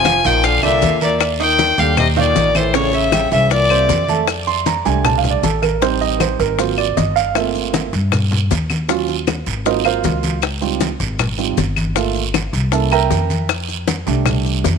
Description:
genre	Afro-Cuban jazz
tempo	156 BPM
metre	4/4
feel	straight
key	F major from 4.3 s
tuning	A4 = 439 Hz
part	rich fiddle	melody	0.0-4.1 s	C5 to Ab5	-16 LUFS	left 2 dB	tape echo
part	trombone with straight mute	second line	0.0-4.1 s	A2 to F3	-23 LUFS	left 13 dB	tape echo
part	upright bass	bass	0.0-14.8 s	F1 to G2	-21 LUFS	left 1 dB	none
part	congas	percussion	0.0-14.8 s	none	-23 LUFS	left 1 dB	none
part	warm grand piano	accompaniment	0.1-14.8 s	C3 to Eb6	-19 LUFS	right 12 dB	none
part	bongos	percussion	0.1-14.8 s	none	-23 LUFS	left 16 dB	none
part	claves	percussion	0.1-14.5 s	none	-26 LUFS	left 14 dB	none
part	guiro	percussion	0.1-14.8 s	none	-27 LUFS	right 13 dB	none
part	maracas	percussion	0.1-14.8 s	none	-33 LUFS	left 17 dB	none
room	light reverb, small room ambience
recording	1960s-style stereo with parts hard left and right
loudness	-14 LUFS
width	side -6 dB against mid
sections	0.0-4.3 A section; 4.3-14.8 B section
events	grand piano solo 4.3-14.8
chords	0.4 Bb; 1.2 Ebadd9; 2.7 A7; 3.5 C13; 4.3 F69; 5.8 Am7b5; 6.6 Ab13; 7.4 Gm11; 8.9 Ebm9; 9.7 Ab13; 10.4 Dbmaj9#11; 12.0 Gm9; 12.7 C7b9; 13.5 F69

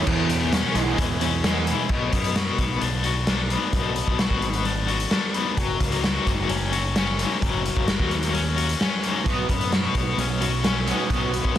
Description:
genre	indie rock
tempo	130 BPM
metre	4/4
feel	straight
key	unclear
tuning	A4 = 441 Hz
part	overdriven electric guitar	riff	0.0-11.6 s	E2 to F#4	-25 LUFS	left 6 dB	tremolo
part	raw garage guitar	riff	0.0-1.9, 9.2-11.6 s	E2 to B3	-28 LUFS	right 8 dB	overdrive, ensemble chorus, digital delay
part	growling picked electric bass	bass	0.0-11.6 s	F#1 to F#2	-27 LUFS	equal	overdrive
part	raw garage drum kit	drums	0.1-11.6 s	crash cymbal, hi-hat, kick drum, snare drum	-24 LUFS	equal	none
room	moderate studio reverb, RT60 0.6 s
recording	dense, heavily limited modern master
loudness	-20 LUFS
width	side -11 dB against mid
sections	0.1-1.9 A section; 1.9-11.6 B section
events	none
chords	0.1 E6; 1.9 Bm; 5.6 F#; 9.3 Bsus2

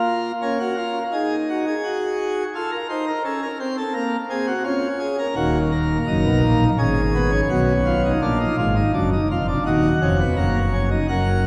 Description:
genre	classical, baroque-style 4-part fugue for pipe organ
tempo	84 BPM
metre	4/4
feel	straight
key	Eb minor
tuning	A4 = 441 Hz
part	pipe organ, plenum	solo	0.0-11.5 s	Eb1 to F#5	-21 LUFS	equal	none
room	wet church reverb, RT60 3.0 s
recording	recorded in a church or concert hall, vinyl crackle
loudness	-21 LUFS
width	mono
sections	0.0-11.1 A section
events	none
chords	0.0 Bbm; 1.1 Ebm; 2.5 F7; 4.0 Bbm; 5.4 Ebm; 6.8 Abm; 8.2 Bb7; 9.7 Ebm

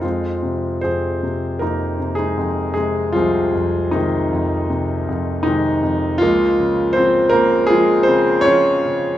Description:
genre	classical, lyrical solo piano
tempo	74-82 BPM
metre	4/4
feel	rubato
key	F minor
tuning	A4 = 440 Hz
part	warm concert grand piano	solo	0.0-9.2 s	C2 to Db5	-15 LUFS	equal	none
room	moderate recital hall reverb, RT60 1.5 s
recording	none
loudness	-15 LUFS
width	side -12 dB against mid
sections	0.0-9.2 A section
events	none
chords	0.0 Fm7; 6.2 Db6

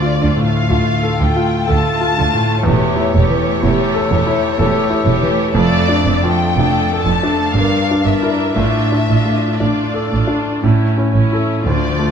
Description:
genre	classical, romantic movement for piano and orchestra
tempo	57-64 BPM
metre	3/4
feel	rubato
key	D minor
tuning	A4 = 440 Hz
part	bright grand piano	melody	0.0-12.1 s	D2 to Bb4	-16 LUFS	left 1 dB	none
part	warm symphonic violin section	melody	0.0-12.1 s	C#5 to A5	-20 LUFS	left 5 dB	none
part	clear symphonic viola section	accompaniment	0.0-12.1 s	D3 to Bb4	-21 LUFS	right 2 dB	none
part	rich studio double bass section	bass	0.2-12.1 s	E1 to D2	-20 LUFS	right 4 dB	none
part	rich symphonic cello section	bass	0.2-12.1 s	D2 to D3	-22 LUFS	right 3 dB	none
room	moderate scoring stage reverb, RT60 1.6 s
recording	dark, warm production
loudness	-13 LUFS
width	side -7 dB against mid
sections	0.0-12.1 A section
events	none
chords	0.0 Dm; 2.7 A7/E; 5.5 Dm/F; 7.5 Em7b5/G; 8.6 Dm/A; 10.6 A

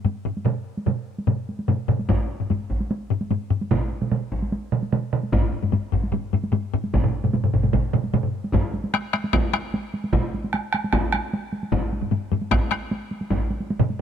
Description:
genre	japanese traditional, taiko drum ensemble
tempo	150 BPM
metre	4/4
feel	straight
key	none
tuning	none
part	taiko ensemble	percussion	0.0-13.9 s	none	-24 LUFS	left 5 dB	none
part	solo taiko drums	percussion	0.1-14.0 s	none	-28 LUFS	right 2 dB	none
part	solo taiko drums	percussion	0.5-11.2, 13.8-13.9 s	none	-24 LUFS	right 6 dB	none
part	taiko ensemble	percussion	2.1-13.4 s	none	-24 LUFS	equal	none
room	little or no reverb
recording	none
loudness	-22 LUFS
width	side -8 dB against mid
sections	0.0-8.5 A section; 8.5-14.0 B section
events	speeding up 0.0-14.0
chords	none

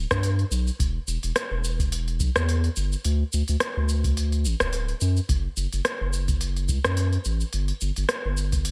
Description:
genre	sunset chillout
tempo	107 BPM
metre	4/4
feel	swing 55% on 16ths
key	unclear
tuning	A4 = 439 Hz
part	round analog bass	bass	0.0-8.7 s	D1 to G2	-27 LUFS	equal	none
part	electronic kick drum	drums	0.1-8.6 s	none	-28 LUFS	equal	none
part	smooth R&B drum kit	drums	0.1-8.7 s	hi-hat, rim click, shaker	-31 LUFS	equal	none
room	little or no reverb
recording	none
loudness	-25 LUFS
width	mono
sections	0.0-8.7 A section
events	none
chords	none

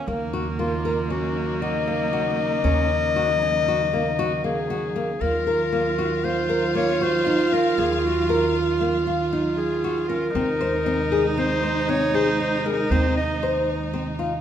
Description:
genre	contemporary instrumental, chamber music in an uneven meter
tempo	117 BPM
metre	5/4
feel	straight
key	Eb dorian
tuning	A4 = 438 Hz
part	warm viola	second line	0.0-14.4 s	Bb3 to F4	-26 LUFS	right 4 dB	none
part	upright bass	bass	0.0-14.4 s	Eb2	-29 LUFS	right 2 dB	none
part	warm chamber string section	sustained chords	0.1-14.4 s	C3 to F5	-31 LUFS	left 2 dB	none
part	nylon-string guitar	arpeggios	0.1-14.3 s	Bb3 to C5	-26 LUFS	left 2 dB	none
part	clear clarinet	melody	0.6-13.6 s	F4 to Eb5	-25 LUFS	left 3 dB	none
room	moderate recital hall reverb, RT60 1.5 s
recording	minimal, uncompressed stereo recording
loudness	-20 LUFS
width	side -9 dB against mid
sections	0.0-5.2 A section; 5.2-14.4 B section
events	none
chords	0.0 Ebm7; 5.2 Ebmadd9; 10.3 Ab/Eb

